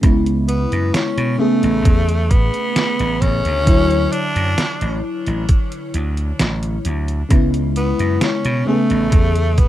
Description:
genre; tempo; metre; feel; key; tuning
vaporwave; 66 BPM; 4/4; straight; D lydian; A4 = 440 Hz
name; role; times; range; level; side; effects
FM electric piano with soft pad layer; accompaniment; 0.0-9.7 s; C#3 to C#5; -20 LUFS; left 1 dB; lush chorus, cassette tape, analog delay, plate reverb
vintage slap bass; bass; 0.0-9.7 s; A1 to B2; -19 LUFS; equal; none
detuned 8-bit digital drum machine; drums; 0.0-9.7 s; hi-hat, snare drum; -22 LUFS; right 1 dB; none
electronic kick drum; drums; 0.0-9.7 s; none; -14 LUFS; equal; none
raspy tenor saxophone; melody; 0.5-9.7 s; A3 to D4; -23 LUFS; equal; tape echo, plate reverb
room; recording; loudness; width
light reverb; rough home demo mix; -15 LUFS; side -13 dB against mid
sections
0.0-9.7 A section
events
none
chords
0.0 C#m7; 1.4 Amaj9; 3.7 Dmaj9; 7.3 C#m7; 8.7 Amaj9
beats
| 0.04 0.94 1.85 2.76 | 3.67 4.58 5.49 6.40 | 7.31 8.22 9.13

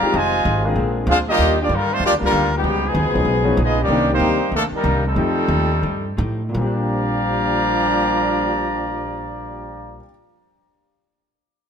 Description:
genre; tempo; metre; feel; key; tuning
jazz; 163-192 BPM; 4/4; swing 61% on 8ths; Bb major; A4 = 442 Hz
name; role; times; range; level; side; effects
clear trumpet section; melody; 0.0-10.0 s; G3 to Bb5; -20 LUFS; left 1 dB; none
mellow trombone section; second line; 0.0-10.0 s; Ab2 to F4; -24 LUFS; right 2 dB; none
vintage hollow-body jazz guitar; accompaniment; 0.0-10.2 s; Bb2 to Ab4; -30 LUFS; left 4 dB; none
warm concert grand piano; accompaniment; 0.0-10.1 s; Bb2 to Bb4; -26 LUFS; left 2 dB; none
upright bass; bass; 0.0-10.0 s; F1 to A2; -23 LUFS; equal; none
clear trombone section; sustained chords; 0.7-1.1 s; D3 to Ab4; -31 LUFS; left 2 dB; none
room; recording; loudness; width
moderate echo chamber reverb, RT60 2.1 s; minimal, uncompressed stereo recording; -16 LUFS; side -7 dB against mid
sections
0.0-1.4 A section; 1.4-6.5 B section; 6.5-9.5 C section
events
slowing down 3.9-6.5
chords
0.1 Fm7; 0.8 Bb9; 1.4 Ebmaj9#11; 2.6 Db9; 3.9 Cm9; 5.2 F9; 6.5 Bb69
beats
| 0.14 0.46 0.77 1.08 | 1.39 1.70 2.02 2.33 | 2.64 2.95 3.26 3.58 | 3.89 4.20 4.52 4.84 | 5.16 5.50 5.84 6.19 | 6.55 6.91 7.28 7.65 | 8.02 8.38 8.75 9.12

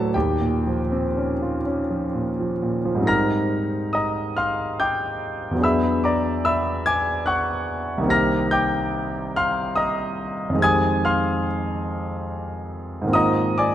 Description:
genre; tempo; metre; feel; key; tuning
classical, impressionist solo piano; 39-49 BPM (dotted quarters); 6/8; rubato; Ab lydian; A4 = 442 Hz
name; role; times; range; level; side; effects
bright concert grand piano; solo; 0.0-13.7 s; C2 to Bb6; -20 LUFS; equal; none
room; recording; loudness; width
moderate scoring stage reverb, RT60 2.1 s; dark, warm production; -20 LUFS; side -11 dB against mid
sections
0.0-3.1 A section; 3.1-13.7 B section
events
none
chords
0.1 Eb13; 3.1 Abmaj9; 5.6 E9; 8.1 Cm7; 10.6 Fm9; 13.1 Ab69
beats
| 0.14 1.65 | 3.07 4.38 | 5.63 6.85 | 8.11 9.35 | 10.62 11.88 | 13.15

